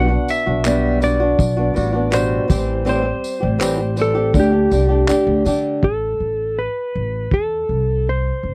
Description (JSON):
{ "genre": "acoustic pop", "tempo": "81 BPM", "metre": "4/4", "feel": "straight", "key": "unclear", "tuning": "A4 = 437 Hz", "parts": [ { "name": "clean lap steel guitar", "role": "melody", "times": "0.0-8.5 s", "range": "G4 to F#5", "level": "-23 LUFS", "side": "equal", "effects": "none" }, { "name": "flamenco guitar", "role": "accompaniment", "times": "0.0-5.8 s", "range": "A2 to G4", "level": "-22 LUFS", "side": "equal", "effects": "none" }, { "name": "upright bass", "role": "bass", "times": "0.0-8.5 s", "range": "F#1 to D3", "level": "-23 LUFS", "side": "equal", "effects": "none" }, { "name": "cloth-damped thuddy drum kit", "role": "drums", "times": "0.3-7.5 s", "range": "handclaps, kick drum, tambourine", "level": "-22 LUFS", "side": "equal", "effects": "none" }, { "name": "tambourine", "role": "percussion", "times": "0.3-5.6 s", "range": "none", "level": "-39 LUFS", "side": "equal", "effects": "none" } ], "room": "little or no reverb", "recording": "dry, close 1970s-style studio recording", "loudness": "-18 LUFS", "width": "mono", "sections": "0.0-5.8 A section; 5.8-8.5 B section", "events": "none", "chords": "0.0 Gmaj7/B; 2.5 Am7; 4.4 Dsus4; 5.8 Am" }